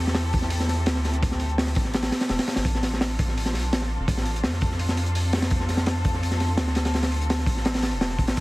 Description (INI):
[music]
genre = drum and bass, jungle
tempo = 168 BPM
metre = 4/4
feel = straight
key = unclear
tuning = A4 = 442 Hz
[part]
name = muted studio string section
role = sustained chords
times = 0.0-8.4 s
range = C4 to A4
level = -33 LUFS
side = left 1 dB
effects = none
[part]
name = soft dub sub bass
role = bass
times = 0.0-8.4 s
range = E1 to F2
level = -26 LUFS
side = equal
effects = tube saturation
[part]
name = crunchy breakbeat drum kit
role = drums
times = 0.1-8.4 s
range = hi-hat, kick drum, snare drum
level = -24 LUFS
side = equal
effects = none
[part]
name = hi-hat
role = drums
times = 8.4 s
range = none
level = -36 LUFS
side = right 2 dB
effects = high-pass filter on hats, high-pass filter on snare, high-pass filter on room
[sound]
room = light reverb, studio ambience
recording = heavily compressed radio sound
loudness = -22 LUFS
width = side -20 dB against mid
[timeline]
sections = 0.0-8.4 A section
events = none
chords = 0.0 Am7; 2.7 F6